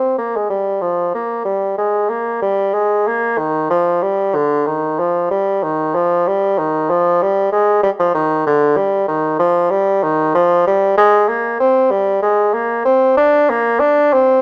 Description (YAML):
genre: classical, baroque-style fantasia for unaccompanied bassoon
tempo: 63 BPM (dotted quarters)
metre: 12/8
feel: rubato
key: Eb major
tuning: A4 = 440 Hz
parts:
  - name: warm bassoon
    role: solo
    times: 0.0-14.4 s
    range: D3 to D4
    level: -16 LUFS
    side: equal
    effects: none
room: moderate stone room reverb, RT60 1.2 s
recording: none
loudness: -16 LUFS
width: mono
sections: 0.0-14.4 A section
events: none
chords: none